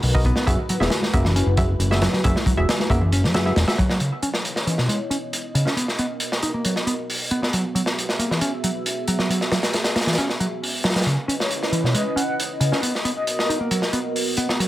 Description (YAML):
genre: breakbeat, breaks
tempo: 136 BPM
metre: 4/4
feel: straight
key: F# mixolydian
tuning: A4 = 441 Hz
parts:
  - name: dark analog pad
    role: sustained chords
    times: 0.0-14.7 s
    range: G#3 to E5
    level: -29 LUFS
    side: equal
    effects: chorus, sidechain pumping
  - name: fat analog bass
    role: bass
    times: 0.0-3.6 s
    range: E1 to F#2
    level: -20 LUFS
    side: equal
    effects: tube saturation
  - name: crunchy breakbeat drum kit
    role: drums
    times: 0.0-14.7 s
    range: hi-hat, kick drum, snare drum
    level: -23 LUFS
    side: equal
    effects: high-pass filter on kick, high-pass filter on hats, high-pass filter on snare, high-pass filter on room
  - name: filtered dub chord stab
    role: stabs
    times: 0.1-3.8 s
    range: B3 to E5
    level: -27 LUFS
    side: right 1 dB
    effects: chorus, vintage 12-bit sampler grit, tape echo
  - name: picked electric bass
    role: riff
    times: 0.3-14.7 s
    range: B2 to D#4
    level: -24 LUFS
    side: equal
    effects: tube saturation, vintage 12-bit sampler grit, low-pass filter, tape echo
  - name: breathy flute-like synth lead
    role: melody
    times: 11.4-13.5 s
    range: C#5 to F#5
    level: -29 LUFS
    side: left 1 dB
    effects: chorus, telephone sound, tape echo
room: light reverb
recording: none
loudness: -19 LUFS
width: side -15 dB against mid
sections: 0.0-4.0 A section; 4.0-14.7 B section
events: none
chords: 0.5 F#9sus4; 4.0 C#m9; 5.8 Bmaj7; 7.5 F#9sus4; 11.1 C#m9; 12.8 Bmaj7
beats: 0.04 | 0.48 0.92 1.36 1.80 | 2.24 2.68 3.12 3.56 | 4.01 4.45 4.89 5.33 | 5.77 6.21 6.65 7.09 | 7.54 7.98 8.42 8.86 | 9.30 9.74 10.18 10.62 | 11.06 11.51 11.95 12.39 | 12.83 13.27 13.71 14.15 | 14.59